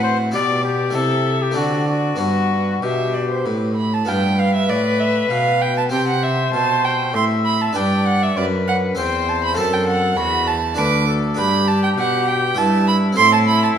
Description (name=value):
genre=classical, baroque-style sonata movement with continuo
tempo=98 BPM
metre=3/4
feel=straight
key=G major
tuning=A4 = 440 Hz
part: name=clear trumpet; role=melody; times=0.0-13.8 s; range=E4 to E5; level=-22 LUFS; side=left 6 dB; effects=none
part: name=rich violin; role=second line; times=0.0-13.7 s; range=B4 to D6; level=-20 LUFS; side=right 5 dB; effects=none
part: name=harpsichord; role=accompaniment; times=0.0-13.8 s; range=D2 to C5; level=-24 LUFS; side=left 1 dB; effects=none
part: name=dark cello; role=bass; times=0.0-13.8 s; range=D2 to D3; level=-21 LUFS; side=right 1 dB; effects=none
room=wet recital hall reverb, RT60 1.6 s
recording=none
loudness=-16 LUFS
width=side -8 dB against mid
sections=0.0-4.1 A section; 4.1-13.8 A section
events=none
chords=0.3 G/B; 1.0 Am/C; 1.6 D7; 2.2 G; 4.1 G7; 5.9 C; 7.8 G; 9.0 C/E; 9.6 F#dim; 10.8 Bm/D; 11.4 G; 12.6 Em/G; 13.2 Am